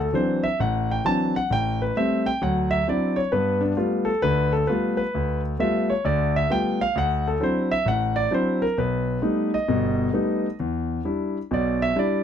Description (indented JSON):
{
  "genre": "solo jazz",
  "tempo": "132 BPM",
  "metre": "4/4",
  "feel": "swing 67% on 8ths",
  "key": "D mixolydian",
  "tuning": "A4 = 441 Hz",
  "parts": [
    { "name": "warm concert grand piano", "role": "solo", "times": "0.0-12.2 s", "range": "G1 to A5", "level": "-21 LUFS", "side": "equal", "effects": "none" }
  ],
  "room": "light reverb",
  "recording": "close, detailed microphones",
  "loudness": "-21 LUFS",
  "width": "side -8 dB against mid",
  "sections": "0.0-12.2 A section",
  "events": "grand piano solo 0.0-12.2",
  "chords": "0.0 D9; 1.5 Am7; 2.4 D9; 3.3 G9; 6.9 D9; 8.8 Baug7; 10.6 Em7",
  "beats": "0.12 0.58 1.03 | 1.49 1.94 2.40 2.85 | 3.31 3.77 4.22 4.67 | 5.13 5.58 6.04 6.49 | 6.95 7.40 7.86 8.31 | 8.77 9.22 9.68 10.13 | 10.59 11.04 11.50 11.95"
}